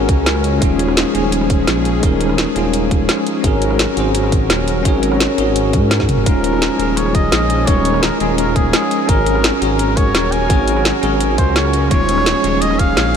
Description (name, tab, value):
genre	liquid drum and bass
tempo	170 BPM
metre	4/4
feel	straight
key	Eb minor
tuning	A4 = 440 Hz
part	bell-like tine electric piano	accompaniment	0.0-13.2 s	Ab3 to Db5	-18 LUFS	equal	fast stereo tremolo, vintage 12-bit sampler grit, ping-pong delay
part	warm analog pad	sustained chords	0.0-13.2 s	F3 to Bb4	-23 LUFS	left 1 dB	chorus, sidechain pumping
part	dark detuned saw bass	bass	0.0-13.2 s	Eb1 to Ab2	-19 LUFS	equal	none
part	drum and bass drum kit	drums	0.1-13.2 s	hi-hat, rim click, snare drum, toms	-20 LUFS	equal	none
part	electronic kick drum	drums	0.1-12.9 s	none	-16 LUFS	equal	none
part	trumpet with cup mute	melody	6.3-13.2 s	Ab4 to Ab5	-20 LUFS	equal	tape echo
room	moderate huge ambient reverb, RT60 7.7 s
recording	dreamy mix soaked in reverb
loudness	-13 LUFS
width	side -7 dB against mid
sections	0.0-13.2 A section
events	drum fill 6.0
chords	0.0 Ab9sus4; 0.6 Eb9sus4; 3.4 Ab9sus4; 6.3 Eb9sus4; 9.1 Ab9sus4; 11.9 Eb9sus4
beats	0.26 | 0.62 0.97 1.32 1.68 | 2.03 2.38 2.73 3.09 | 3.44 3.79 4.15 4.50 | 4.85 5.21 5.56 5.91 | 6.26 6.62 6.97 7.32 | 7.68 8.03 8.38 8.73 | 9.09 9.44 9.79 10.15 | 10.50 10.85 11.21 11.56 | 11.91 12.26 12.62 12.97